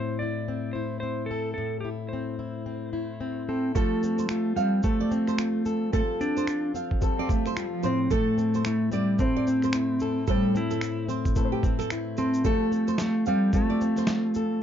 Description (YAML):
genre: acoustic pop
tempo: 110 BPM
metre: 4/4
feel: swing 60% on 16ths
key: F major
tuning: A4 = 441 Hz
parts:
  - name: clean lap steel guitar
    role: melody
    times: 0.0-14.6 s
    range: G3 to D5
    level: -26 LUFS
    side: right 1 dB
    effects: none
  - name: fingerpicked plugged-in steel-string acoustic guitar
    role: accompaniment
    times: 0.0-14.6 s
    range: A2 to A4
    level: -31 LUFS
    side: left 5 dB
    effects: none
  - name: dark baby grand piano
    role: accompaniment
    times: 3.7-14.6 s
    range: G3 to C5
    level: -36 LUFS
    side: left 7 dB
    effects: none
  - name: nylon-string guitar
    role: arpeggios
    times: 3.8-14.1 s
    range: G4 to F5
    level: -32 LUFS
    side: right 8 dB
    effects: none
  - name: dusty soul sampler-style drum kit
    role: drums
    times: 3.8-14.5 s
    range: finger snaps, kick drum, shaker, snare drum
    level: -28 LUFS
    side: right 1 dB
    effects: none
  - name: warm cello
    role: second line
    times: 7.2-8.0 s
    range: F3 to C4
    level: -33 LUFS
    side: right 8 dB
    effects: none
room: light reverb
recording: dark, warm production, nothing above 7.5 kHz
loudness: -24 LUFS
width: side -9 dB against mid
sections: 0.0-3.8 A section; 3.8-14.6 B section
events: none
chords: 0.0 Am; 3.8 Fadd9; 7.8 Am; 12.5 Fadd9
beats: 0.49 1.04 | 1.58 2.12 2.67 3.21 | 3.76 4.30 4.84 5.39 | 5.93 6.47 7.02 7.56 | 8.10 8.65 9.19 9.73 | 10.28 10.82 11.36 11.91 | 12.45 12.99 13.54 14.08 | 14.62